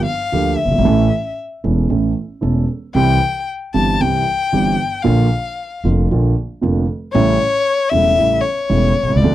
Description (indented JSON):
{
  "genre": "tango",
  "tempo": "115 BPM",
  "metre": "4/4",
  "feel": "rubato",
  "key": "unclear",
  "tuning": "A4 = 441 Hz",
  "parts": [
    { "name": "warm violin", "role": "second line", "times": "0.0-9.3 s", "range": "C#5 to A5", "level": "-18 LUFS", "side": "left 4 dB", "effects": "none" },
    { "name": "dark concert grand piano", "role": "accompaniment", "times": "0.0-9.3 s", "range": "E1 to A4", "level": "-17 LUFS", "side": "right 3 dB", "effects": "none" },
    { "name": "upright bass", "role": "bass", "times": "0.0-9.3 s", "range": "E1 to D2", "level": "-19 LUFS", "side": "equal", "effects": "none" }
  ],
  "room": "little or no reverb",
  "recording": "dry, close 1970s-style studio recording",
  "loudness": "-14 LUFS",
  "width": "side -13 dB against mid",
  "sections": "0.0-9.3 A section",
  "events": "violin solo 0.0-9.3",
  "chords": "0.0 Gm7; 0.8 A; 3.0 C; 5.0 Bb; 7.1 A7",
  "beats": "0.33 | 0.85 1.37 1.90 2.42 | 2.95 3.48 4.00 4.53 | 5.05 5.57 6.09 6.62 | 7.14 7.66 8.18 8.70 | 9.22"
}